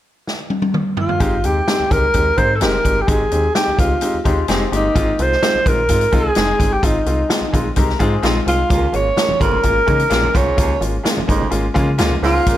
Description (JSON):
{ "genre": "uptempo 1960s-style soul", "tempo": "128 BPM", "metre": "4/4", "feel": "straight", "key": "Ab major", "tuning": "A4 = 440 Hz", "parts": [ { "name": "swinging big-band drum kit", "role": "drums", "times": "0.3-12.6 s", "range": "hi-hat, kick drum, snare drum, toms", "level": "-19 LUFS", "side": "equal", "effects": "none" }, { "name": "warm alto saxophone", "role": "melody", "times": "1.0-12.6 s", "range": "Eb4 to Db5", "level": "-18 LUFS", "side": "equal", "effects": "none" }, { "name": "warm concert grand piano", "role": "accompaniment", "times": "1.2-12.6 s", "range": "Ab3 to Bb4", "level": "-21 LUFS", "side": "left 1 dB", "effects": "none" }, { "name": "metallic FM bass", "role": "bass", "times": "1.2-12.6 s", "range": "F1 to Db3", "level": "-21 LUFS", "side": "equal", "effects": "none" }, { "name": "electric guitar through a small old amp", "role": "riff", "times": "4.3-8.7 s", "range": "Ab3 to Bb4", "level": "-25 LUFS", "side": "left 8 dB", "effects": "none" }, { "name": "clear baritone saxophone", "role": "riff", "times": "8.7-12.6 s", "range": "Eb2 to Bb2", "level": "-24 LUFS", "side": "right 8 dB", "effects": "none" }, { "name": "congas", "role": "percussion", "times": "8.9-12.3 s", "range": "none", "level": "-30 LUFS", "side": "right 4 dB", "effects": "none" } ], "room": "studio reverb", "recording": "none", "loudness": "-14 LUFS", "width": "side -13 dB against mid", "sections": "0.0-1.2 A section; 1.2-12.6 B section", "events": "drum fill 0.3-1.2", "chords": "0.0 N.C.; 1.2 Abmaj7; 5.0 Fm7; 8.7 Db6" }